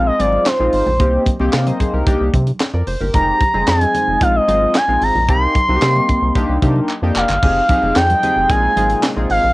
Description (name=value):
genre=early-eighties boogie funk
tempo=112 BPM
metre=4/4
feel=straight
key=F dorian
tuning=A4 = 440 Hz
part: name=expressive portamento lead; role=melody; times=0.0-9.5 s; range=C5 to C6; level=-16 LUFS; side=equal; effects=chorus, cassette tape
part: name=chorused polysynth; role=accompaniment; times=0.0-9.4 s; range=Ab3 to F5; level=-20 LUFS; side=left 1 dB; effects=cassette tape
part: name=rubbery square bass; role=bass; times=0.0-9.5 s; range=F1 to C3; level=-19 LUFS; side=equal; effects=none
part: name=tight funk drum kit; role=drums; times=0.2-9.4 s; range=crash cymbal, handclaps, hi-hat, kick drum, snare drum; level=-19 LUFS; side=equal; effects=cassette tape
part: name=congas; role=percussion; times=0.2-8.9 s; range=none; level=-28 LUFS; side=right 2 dB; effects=none
part: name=chorused pulse-width pad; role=sustained chords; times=7.4-9.5 s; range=C3 to G5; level=-27 LUFS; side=equal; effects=cassette tape
room=little or no reverb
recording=home recording on cassette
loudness=-13 LUFS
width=side -20 dB against mid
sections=0.0-7.4 A section; 7.4-9.5 B section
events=drum fill 6.9-7.4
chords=0.0 Bb9sus4; 1.0 Cm11; 2.1 Cm9; 3.1 Fm9; 4.2 Bb9sus4; 5.3 Cm7; 6.4 Cm9; 7.4 Fm9; 8.5 Bb9sus4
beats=0.46 | 1.00 1.53 2.07 2.61 | 3.14 3.68 4.21 4.75 | 5.29 5.82 6.36 6.89 | 7.43 7.96 8.50 9.04